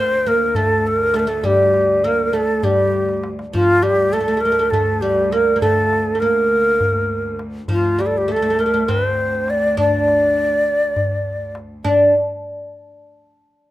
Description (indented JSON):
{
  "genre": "Turkish makam ensemble",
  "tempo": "202 BPM (eighths)",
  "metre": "7/8",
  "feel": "straight",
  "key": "D makam ussak",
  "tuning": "A4 = 438 Hz",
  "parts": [
    { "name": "breathy ney", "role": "melody", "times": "0.0-12.1 s", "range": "F4 to D5", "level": "-17 LUFS", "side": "equal", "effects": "plate reverb" },
    { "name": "oud", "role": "second line", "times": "0.0-12.1 s", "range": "F3 to D4", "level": "-20 LUFS", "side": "equal", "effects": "plate reverb" },
    { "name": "bright studio cello section", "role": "drone", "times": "0.0-11.9 s", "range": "D2", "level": "-31 LUFS", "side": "equal", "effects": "plate reverb" },
    { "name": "darbuka", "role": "percussion", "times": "0.3-12.1 s", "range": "none", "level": "-25 LUFS", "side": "left 1 dB", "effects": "none" }
  ],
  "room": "wet studio reverb, RT60 0.5 s",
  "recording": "rough home demo mix",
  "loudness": "-15 LUFS",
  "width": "side -15 dB against mid",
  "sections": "0.0-11.9 A section; 11.9-13.7 B section",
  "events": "drum fill 2.9-3.5",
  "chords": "none",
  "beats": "0.26 0.55 0.85 1.15 | 1.45 1.74 2.04 2.34 2.64 2.94 3.23 | 3.53 3.83 4.12 4.42 4.72 5.02 5.32 | 5.61 5.91 6.21 6.50 6.80 7.10 7.40 | 7.69 7.99 8.29 8.59 8.88 9.18 9.48 | 9.77 10.07 10.37 10.66 10.96 11.26 11.55 | 11.85"
}